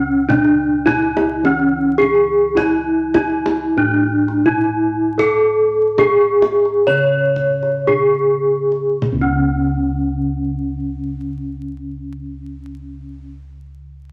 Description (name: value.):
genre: Javanese gamelan.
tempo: 50-106 BPM.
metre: 4/4.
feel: straight.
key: C# pelog.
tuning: A4 = 441 Hz.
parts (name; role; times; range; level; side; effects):
gamelan-type bronze metallophone; melody; 0.0-13.3 s; C#4 to C#5; -18 LUFS; equal; none.
gamelan-type bossed gongs; bass; 0.0-13.2 s; C#2 to A4-20c; -26 LUFS; equal; none.
kendang; percussion; 0.3-9.6 s; none; -28 LUFS; equal; none.
room: moderate large studio reverb, RT60 1.2 s.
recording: vinyl crackle.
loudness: -16 LUFS.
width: mono.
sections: 0.0-9.0 A section; 9.0-13.9 B section.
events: slowing down 2.6-9.0.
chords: none.